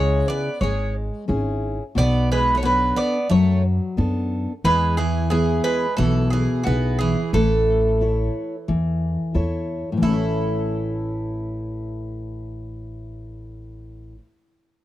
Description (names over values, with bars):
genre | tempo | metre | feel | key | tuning
greek folk, Greek bouzouki band | 89 BPM | 4/4 | straight | A major | A4 = 441 Hz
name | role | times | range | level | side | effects
Greek bouzouki | melody | 0.0-14.2 s | F#4 to D5 | -23 LUFS | right 1 dB | none
Greek bouzouki | second line | 0.0-14.2 s | E3 to E4 | -28 LUFS | right 5 dB | none
fingerpicked steel-string acoustic guitar | accompaniment | 0.0-14.2 s | A2 to C#5 | -24 LUFS | left 2 dB | none
upright bass | bass | 0.0-14.2 s | G#1 to F#2 | -24 LUFS | equal | none
room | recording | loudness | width
small room ambience | dry, close 1970s-style studio recording | -19 LUFS | side -14 dB against mid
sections
0.0-10.0 A section; 10.0-12.7 B section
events
none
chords
0.0 C#m; 2.0 Bm7; 4.7 E; 7.3 A